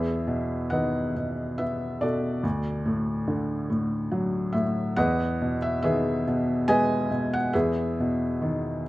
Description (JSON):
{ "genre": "classical, lyrical solo piano", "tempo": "70 BPM", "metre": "3/4", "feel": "rubato", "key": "E major", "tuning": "A4 = 440 Hz", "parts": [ { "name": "felt-muted upright piano", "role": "solo", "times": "0.0-8.9 s", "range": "D2 to G#5", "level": "-24 LUFS", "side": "equal", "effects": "none" } ], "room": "moderate recital hall reverb, RT60 1.7 s", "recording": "close, detailed microphones", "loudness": "-24 LUFS", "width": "side -17 dB against mid", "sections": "0.0-8.9 A section", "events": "none", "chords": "0.0 Emaj7; 2.4 D; 5.0 Emaj7" }